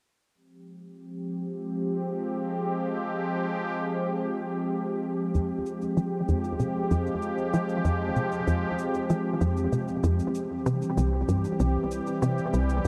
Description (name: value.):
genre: ambient, sequencer-driven space music.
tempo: 96 BPM.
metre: 4/4.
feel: straight.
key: F minor.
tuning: A4 = 442 Hz.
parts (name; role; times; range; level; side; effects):
sweeping resonant pad; sustained chords; 0.3-12.9 s; E3 to G4; -30 LUFS; equal; chorus.
tight sequencer bass; riff; 5.3-12.9 s; C2 to F3; -29 LUFS; equal; subtle chorus, vintage 12-bit sampler grit, analog delay.
shaker and bongos; percussion; 5.3-12.9 s; none; -53 LUFS; equal; analog delay.
room: moderate huge ambient reverb, RT60 8.4 s.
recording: none.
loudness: -28 LUFS.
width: mono.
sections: 0.3-5.3 A section; 5.3-12.9 B section.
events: fade-in on drum 5.3-12.9; filter sweep on analog synth bass 5.3-12.9.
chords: 0.3 Fmadd9; 10.3 C.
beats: | 0.35 0.97 1.60 2.22 | 2.85 3.47 4.10 4.72 | 5.35 5.97 6.60 7.22 | 7.85 8.47 9.10 9.72 | 10.35 10.97 11.60 12.22 | 12.85.